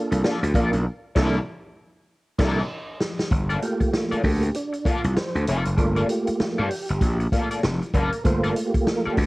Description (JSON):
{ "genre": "funk", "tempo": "97 BPM", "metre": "4/4", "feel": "swing 60% on 16ths", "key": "G dorian", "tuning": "A4 = 436 Hz", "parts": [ { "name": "percussive tonewheel organ", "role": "stabs", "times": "0.0-9.3 s", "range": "A3 to D5", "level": "-26 LUFS", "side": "right 1 dB", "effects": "chorus vibrato, fast rotary speaker, cassette tape" }, { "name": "electric guitar at the edge of break-up", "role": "accompaniment", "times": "0.1-9.2 s", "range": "Bb3 to D5", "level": "-29 LUFS", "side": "left 3 dB", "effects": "wah, lush chorus, cassette tape" }, { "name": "gritty slap bass", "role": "bass", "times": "0.1-9.3 s", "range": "F1 to G2", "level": "-23 LUFS", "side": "equal", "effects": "overdrive" }, { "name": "vintage drum kit", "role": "drums", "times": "0.1-9.3 s", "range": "crash cymbal, hi-hat, kick drum, snare drum", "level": "-25 LUFS", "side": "equal", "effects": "none" } ], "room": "small room ambience", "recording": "home recording on cassette", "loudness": "-21 LUFS", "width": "side -21 dB against mid", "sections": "0.0-3.3 A section; 3.3-9.3 B section", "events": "band accent 0.9-3.3; drum fill 2.1-3.3; tonewheel organ solo 3.3-9.3", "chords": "0.0 Gm9 (rootless); 0.9 C13; 3.3 Gm9" }